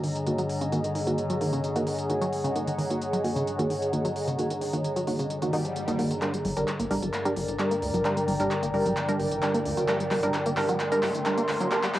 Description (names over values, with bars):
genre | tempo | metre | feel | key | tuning
driving peak-time techno | 131 BPM | 4/4 | straight | G harmonic minor | A4 = 439 Hz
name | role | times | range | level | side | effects
tight sequenced synth | riff | 0.0-12.0 s | C#3 to Eb4 | -33 LUFS | equal | chorus, cassette tape, analog delay
metallic inharmonic drone | drone | 0.0-12.0 s | G2 to D3 | -34 LUFS | left 1 dB | chorus, built-in reverb, cassette tape
techno drum kit | drums | 0.0-12.0 s | handclaps, hi-hat | -35 LUFS | equal | cassette tape
warbly tape-like pad | texture | 0.0-12.0 s | Ab4 to C6 | -29 LUFS | equal | chorus, built-in reverb, cassette tape
wavetable chord stab | stabs | 0.3-11.8 s | Eb3 to Bb4 | -29 LUFS | right 1 dB | cassette tape, analog delay
swell and riser | sound effects | 5.5-12.0 s | none | -38 LUFS | equal | none
gritty driven synth bass | bass | 6.4-12.0 s | G1 to D2 | -36 LUFS | equal | none
room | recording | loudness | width
wet small room reverb, RT60 0.6 s | home recording on cassette, high-pass filter | -24 LUFS | side -14 dB against mid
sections
0.0-6.2 A section; 6.2-12.0 B section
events
filter sweep on synth arpeggio sound 0.0-6.2, 6.2-12.0; swell 5.5-6.2; build-up 6.2-12.0; drum fill 6.2-12.0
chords
0.0 Ebm; 6.2 Gm